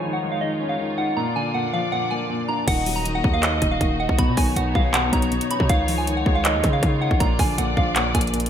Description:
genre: hip hop, trap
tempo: 159 BPM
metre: 4/4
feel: half-time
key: Eb minor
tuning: A4 = 440 Hz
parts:
  - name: soft synth bell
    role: melody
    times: 0.0-8.5 s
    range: Eb5 to B5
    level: -26 LUFS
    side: equal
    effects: chorus, low-pass filter
  - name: dark baby grand piano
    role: accompaniment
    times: 0.0-8.5 s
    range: Bb2 to Eb5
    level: -26 LUFS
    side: left 1 dB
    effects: low-pass filter
  - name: muted symphonic string section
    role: sustained chords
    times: 0.0-8.5 s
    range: Ab3 to Eb5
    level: -28 LUFS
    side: equal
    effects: low-pass filter
  - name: distorted 808-style bass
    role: bass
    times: 2.7-8.5 s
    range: Eb1 to Db3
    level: -25 LUFS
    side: equal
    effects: distortion
  - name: trap drum kit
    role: drums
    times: 2.7-8.5 s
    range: crash cymbal, handclaps, hi-hat, kick drum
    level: -22 LUFS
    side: equal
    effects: gated reverb
room: moderate plate reverb, RT60 1.1 s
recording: bright 1980s-style digital production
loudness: -19 LUFS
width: side -9 dB against mid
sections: 0.0-2.7 A section; 2.7-8.5 B section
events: filter sweep 0.0-2.7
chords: 0.0 Dbadd9; 1.2 Bb; 2.7 Ebm; 4.2 Badd9; 5.7 Dbadd9; 7.2 Bb

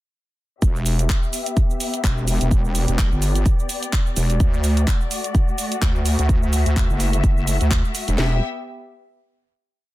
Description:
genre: bass house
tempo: 127 BPM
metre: 4/4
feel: swing 56% on 16ths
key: E minor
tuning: A4 = 441 Hz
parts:
  - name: warm symphonic string section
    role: sustained chords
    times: 0.6-8.4 s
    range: A3 to E5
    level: -28 LUFS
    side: left 2 dB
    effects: sidechain pumping, low-pass filter
  - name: wobble bass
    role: bass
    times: 0.6-8.4 s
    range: E1 to D2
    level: -19 LUFS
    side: equal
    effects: chorus, overdrive, sidechain pumping
  - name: house drum kit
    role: drums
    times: 0.6-8.3 s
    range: kick drum, snare drum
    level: -19 LUFS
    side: equal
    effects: none
  - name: house drum kit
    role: drums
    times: 0.6-8.2 s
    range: handclaps, hi-hat, shaker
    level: -27 LUFS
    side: right 1 dB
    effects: soft clipping on snare
room: little or no reverb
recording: dense, heavily limited modern master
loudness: -18 LUFS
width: side -17 dB against mid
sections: 0.6-8.2 drop; 8.2-9.9 final chord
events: drop 0.6-8.2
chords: 0.6 Em; 4.4 D; 8.2 Em

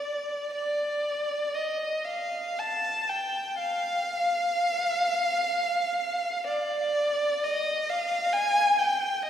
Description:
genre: classical, free, expressive piece for unaccompanied violin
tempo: 38-45 BPM (dotted quarters)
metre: 6/8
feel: rubato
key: unclear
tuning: A4 = 440 Hz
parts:
  - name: warm violin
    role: solo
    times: 0.0-9.3 s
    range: D5 to A5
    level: -25 LUFS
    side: equal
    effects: none
room: wet concert hall reverb, RT60 2.5 s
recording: heard from further back in the room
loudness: -25 LUFS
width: side -9 dB against mid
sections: 0.0-9.3 A section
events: none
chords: none

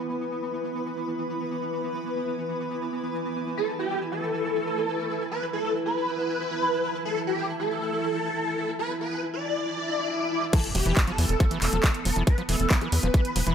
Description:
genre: psychedelic trance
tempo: 138 BPM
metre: 4/4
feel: straight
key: unclear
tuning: A4 = 441 Hz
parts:
  - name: pulsing gated texture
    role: sustained chords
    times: 0.0-13.5 s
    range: E3 to E4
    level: -32 LUFS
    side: right 2 dB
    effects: chorus, built-in reverb, sidechain pumping
  - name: downlifter, swell and impact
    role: sound effects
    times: 0.0-0.1, 9.8-12.3 s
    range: none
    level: -34 LUFS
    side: left 3 dB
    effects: none
  - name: granular cloud pad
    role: texture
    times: 0.0-10.5 s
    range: E4 to B5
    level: -34 LUFS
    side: left 1 dB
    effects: built-in reverb, sidechain pumping
  - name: swarming rave lead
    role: melody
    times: 3.6-13.5 s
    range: G4 to D5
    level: -28 LUFS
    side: equal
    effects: chorus, phaser, cassette tape, sidechain pumping, digital delay
  - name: screaming distorted acid line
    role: riff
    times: 10.5-13.5 s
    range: E3 to F3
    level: -32 LUFS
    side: equal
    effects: distortion, chorus, auto-pan, sidechain pumping, digital delay
  - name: big-room dance drum kit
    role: drums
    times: 10.5-13.5 s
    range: crash cymbal, handclaps, hi-hat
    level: -29 LUFS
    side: equal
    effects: none
  - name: electronic kick drum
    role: drums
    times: 10.5-13.2 s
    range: none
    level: -21 LUFS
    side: equal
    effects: none
  - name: tight sequencer bass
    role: bass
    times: 10.7-13.5 s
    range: E1 to E2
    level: -25 LUFS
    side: equal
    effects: none
room: moderate lush hall reverb, RT60 2.0 s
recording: none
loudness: -24 LUFS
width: side -8 dB against mid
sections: 0.0-10.5 A section; 10.5-13.5 B section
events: swell 9.8-10.5; drop 10.5-13.5; impact 10.5-12.3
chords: 0.0 E5

